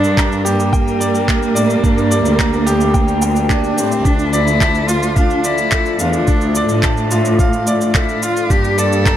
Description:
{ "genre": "piano and strings electronica", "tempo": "108 BPM", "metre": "4/4", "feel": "straight", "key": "D minor", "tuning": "A4 = 440 Hz", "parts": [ { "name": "clear cello", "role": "melody", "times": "0.0-9.2 s", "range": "Bb3 to A4", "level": "-19 LUFS", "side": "right 1 dB", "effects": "none" }, { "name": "warm string quartet", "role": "sustained chords", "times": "0.0-9.2 s", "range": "D3 to Bb4", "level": "-23 LUFS", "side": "equal", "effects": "none" }, { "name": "clear baby grand piano", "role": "riff", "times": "0.0-9.2 s", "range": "D4 to Bb5", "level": "-19 LUFS", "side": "equal", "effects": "ping-pong delay" }, { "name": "warm studio cello section", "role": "bass", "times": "0.0-9.2 s", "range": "D2 to A2", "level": "-18 LUFS", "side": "equal", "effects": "sidechain pumping" }, { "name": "electronic shaker and handclaps", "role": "drums", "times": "0.0-9.2 s", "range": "none", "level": "-23 LUFS", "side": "right 1 dB", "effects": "none" }, { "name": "electronic kick drum", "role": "drums", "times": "0.2-9.2 s", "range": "none", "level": "-16 LUFS", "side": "equal", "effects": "none" }, { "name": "swell", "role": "sound effects", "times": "3.1-4.1 s", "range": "none", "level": "-26 LUFS", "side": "equal", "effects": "none" } ], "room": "light reverb, small room ambience", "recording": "none", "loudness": "-12 LUFS", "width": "side -11 dB against mid", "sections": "0.0-9.2 A section", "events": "swell 3.1-4.1", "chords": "0.0 Gm; 4.1 Dm; 8.5 Gm" }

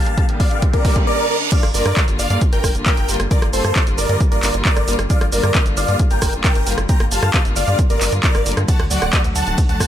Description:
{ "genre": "uplifting trance", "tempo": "134 BPM", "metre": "4/4", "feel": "straight", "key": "G minor", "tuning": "A4 = 442 Hz", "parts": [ { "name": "big supersaw lead", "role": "melody", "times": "0.0-9.9 s", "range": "A4 to Bb5", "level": "-21 LUFS", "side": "equal", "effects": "phaser, sidechain pumping, dub echo" }, { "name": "rich symphonic string section", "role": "sustained chords", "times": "0.0-9.9 s", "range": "D3 to G4", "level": "-27 LUFS", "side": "left 2 dB", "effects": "sidechain pumping" }, { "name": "tight sequencer bass", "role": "bass", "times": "0.0-9.9 s", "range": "D1 to G2", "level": "-22 LUFS", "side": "equal", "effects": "sidechain pumping, high-pass filter" }, { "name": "riser and reverse cymbal", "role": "sound effects", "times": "0.0-1.5 s", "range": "none", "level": "-25 LUFS", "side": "right 3 dB", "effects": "none" }, { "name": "punchy analog drum machine", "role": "drums", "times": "0.1-9.9 s", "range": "crash cymbal, handclaps, hi-hat, ride cymbal, rim click, shaker", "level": "-22 LUFS", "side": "right 1 dB", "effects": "none" }, { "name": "electronic kick drum", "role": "drums", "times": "0.2-9.9 s", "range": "none", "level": "-17 LUFS", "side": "equal", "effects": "none" } ], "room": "digital ambience", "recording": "none", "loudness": "-14 LUFS", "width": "side -11 dB against mid", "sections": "0.0-1.5 A section; 1.5-9.9 B section", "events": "build-up 0.0-1.5; drum fill 0.0-1.1; riser 0.0-1.5; reverse cymbal 0.6-1.5; drop 1.5-9.9", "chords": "0.0 Gm7; 8.7 D" }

